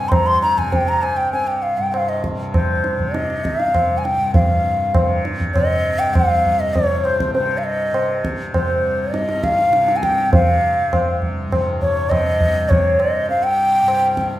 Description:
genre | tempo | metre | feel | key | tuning
indian classical, Hindustani | 100 BPM | 5/4 | straight | C raga bhairavi | A4 = 439 Hz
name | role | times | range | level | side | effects
bansuri | melody | 0.0-14.3 s | C5 to C6 | -18 LUFS | left 1 dB | none
tanpura | drone | 0.0-14.4 s | C2 to C3 | -26 LUFS | equal | none
tabla | percussion | 0.1-14.4 s | none | -20 LUFS | equal | none
room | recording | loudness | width
wet large studio reverb, RT60 0.9 s | band playing live in one room | -15 LUFS | side -14 dB against mid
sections
0.0-4.3 A section; 4.3-14.4 B section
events
speeding up 0.0-14.4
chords
none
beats
0.11 0.72 | 1.33 1.93 2.54 3.14 3.75 | 4.35 4.95 5.55 6.15 6.75 | 7.35 7.95 8.54 9.14 9.74 | 10.33 10.92 11.52 12.11 12.70 | 13.29 13.88

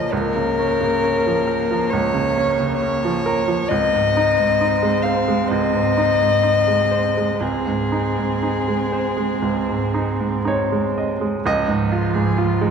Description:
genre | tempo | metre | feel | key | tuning
neoclassical piano and strings | 56-68 BPM | 4/4 | rubato | unclear | A4 = 437 Hz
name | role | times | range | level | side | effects
warm violin | melody | 0.0-12.7 s | Db4 to F5 | -21 LUFS | left 6 dB | none
dark cello | second line | 0.0-12.7 s | F3 to C4 | -25 LUFS | right 5 dB | none
bright baby grand piano | accompaniment | 0.0-12.7 s | Db2 to Eb5 | -20 LUFS | right 3 dB | none
room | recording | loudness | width
wet recital hall reverb, RT60 1.4 s | recorded in a church or concert hall | -17 LUFS | side -6 dB against mid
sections
0.0-11.4 A section; 11.4-12.7 A section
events
none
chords
0.0 Bbm/Db; 3.7 Ab/Db; 11.4 Dbadd9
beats
| 0.12 1.01 1.90 2.79 | 3.70 4.59 5.49 6.43 | 7.41 8.42 9.42 10.46 | 11.45 12.37

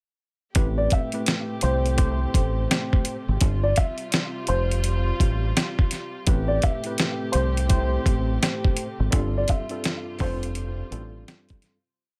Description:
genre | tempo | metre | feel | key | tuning
hip hop, boom-bap hip-hop | 84 BPM | 4/4 | swing 62% on 16ths | A minor | A4 = 437 Hz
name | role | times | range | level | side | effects
warm chamber string section | sustained chords | 0.5-12.0 s | C3 to G4 | -37 LUFS | equal | high-pass filter, low-pass filter
dusty soul sampler-style drum kit | drums | 0.5-11.8 s | hi-hat, kick drum, snare drum | -25 LUFS | equal | none
tine electric piano | accompaniment | 0.6-11.8 s | G2 to C5 | -33 LUFS | equal | high-pass filter, low-pass filter
deep dub fingered electric bass | bass | 0.6-11.2 s | F1 to C2 | -27 LUFS | equal | none
dark upright piano | melody | 0.8-11.2 s | C5 to E5 | -32 LUFS | equal | high-pass filter, low-pass filter, tape echo
room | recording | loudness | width
light reverb | none | -24 LUFS | mono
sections
0.6-12.0 hook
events
fade-out 9.1-12.0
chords
0.6 Am7; 3.4 G7sus4; 6.3 Am7; 9.1 G7sus4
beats
| 0.56 1.27 1.99 2.70 | 3.41 4.13 4.84 5.56 | 6.27 6.99 7.70 8.41 | 9.13 9.84 10.56 11.27

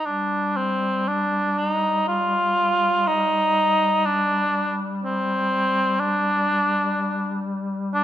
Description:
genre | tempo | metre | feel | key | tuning
caucasian folk | 61 BPM | 4/4 | rubato | unclear | A4 = 440 Hz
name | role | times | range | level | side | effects
warm cor anglais | melody | 0.0-8.0 s | C4 to F4 | -20 LUFS | equal | none
mellow duduk | drone | 0.0-8.0 s | G3 | -27 LUFS | left 2 dB | none
room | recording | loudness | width
moderate scoring stage reverb, RT60 2.0 s | minimal, uncompressed stereo recording | -20 LUFS | side -11 dB against mid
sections
0.0-8.0 A section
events
none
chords
none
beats
| 0.04 1.07 2.08 3.07 | 4.05 5.03 5.99 6.95 | 7.93

